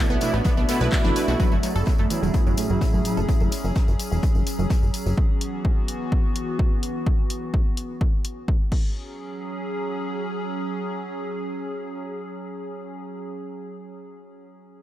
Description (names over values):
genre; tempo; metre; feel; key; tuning
melodic techno; 127 BPM; 4/4; straight; F# minor; A4 = 440 Hz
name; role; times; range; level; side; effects
evolving wavetable pad; sustained chords; 0.0-13.1 s; E3 to D5; -30 LUFS; equal; chorus, built-in reverb, vintage 12-bit sampler grit, sidechain pumping
wide unison pluck; arpeggios; 0.0-3.3 s; E3 to D5; -28 LUFS; right 1 dB; phaser, sidechain pumping, tape echo
analog synth brass; stabs; 0.0-3.5 s; A2 to E4; -28 LUFS; right 2 dB; chorus, cassette tape, sidechain pumping, dub echo
plucky analog bass; bass; 0.1-5.1 s; E1 to B1; -24 LUFS; equal; sidechain pumping
tambourine; percussion; 0.1-5.2 s; none; -39 LUFS; left 3 dB; none
loose indie drum kit; drums; 0.2-5.1 s; hi-hat, snare drum; -43 LUFS; left 3 dB; none
punchy analog drum machine; drums; 0.2-8.8 s; congas, crash cymbal, handclaps, hi-hat; -32 LUFS; left 2 dB; dub echo
electronic kick drum; drums; 0.5-8.8 s; none; -21 LUFS; equal; none
room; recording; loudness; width
digital ambience; echo-heavy mix; -21 LUFS; side -13 dB against mid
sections
0.0-1.4 A section; 1.4-9.0 B section; 9.0-12.7 C section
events
drop 0.0-1.4; band accent 0.9; filter sweep on synth pluck 1.4-3.3; filter sweep on analog polysynth 1.4-3.3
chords
0.0 B7sus4; 1.4 F#m7; 5.2 E5; 8.7 F#5